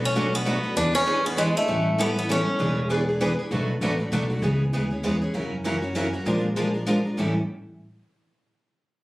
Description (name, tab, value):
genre	acoustic string swing (jazz manouche)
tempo	197 BPM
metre	3/4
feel	swing 59% on 8ths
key	unclear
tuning	A4 = 440 Hz
part	picked steel-string acoustic guitar	accompaniment	0.0-7.3 s	A2 to Bb4	-28 LUFS	left 1 dB	none
part	picked steel-string acoustic guitar	accompaniment	0.0-7.3 s	A2 to B4	-28 LUFS	right 1 dB	none
part	upright bass	bass	0.0-7.3 s	E1 to F#2	-28 LUFS	equal	none
part	picked swing-style acoustic guitar	melody	0.1-2.9 s	G#3 to D4	-24 LUFS	equal	plate reverb
room	moderate studio reverb, RT60 0.5 s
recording	recorded on a phone in the room, club reverb, compression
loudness	-22 LUFS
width	side -19 dB against mid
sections	0.0-3.5 A section; 3.5-7.2 B section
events	none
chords	0.0 Bm7; 0.8 E7; 1.7 A7; 2.6 E7; 3.5 Bm7; 4.4 C#m7; 5.3 F#7; 6.3 Bb7; 7.2 A7